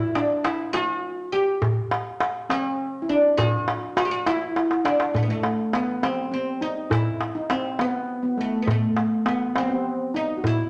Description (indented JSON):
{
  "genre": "Arabic maqam ensemble",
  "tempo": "68 BPM (dotted quarters)",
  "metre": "6/8",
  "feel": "straight",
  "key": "unclear",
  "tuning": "A4 = 440 Hz",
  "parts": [
    { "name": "oud", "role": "melody", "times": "0.0-10.7 s", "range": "A3 to G4", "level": "-29 LUFS", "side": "equal", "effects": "none" },
    { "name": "steel pan", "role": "second line", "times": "0.0-10.7 s", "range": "A3 to G4", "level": "-28 LUFS", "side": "equal", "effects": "none" },
    { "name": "darbuka", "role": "percussion", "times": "0.2-10.6 s", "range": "none", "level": "-28 LUFS", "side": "equal", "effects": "none" }
  ],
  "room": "moderate large studio reverb, RT60 1.1 s",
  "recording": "nothing above 10.7 kHz",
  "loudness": "-24 LUFS",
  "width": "mono",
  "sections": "0.0-5.1 A section; 5.1-10.7 B section",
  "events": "drum fill 4.6-5.1",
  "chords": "none",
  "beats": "0.74 | 1.62 2.50 | 3.38 4.26 | 5.15 6.03 | 6.91 7.80 | 8.68 9.56 | 10.45"
}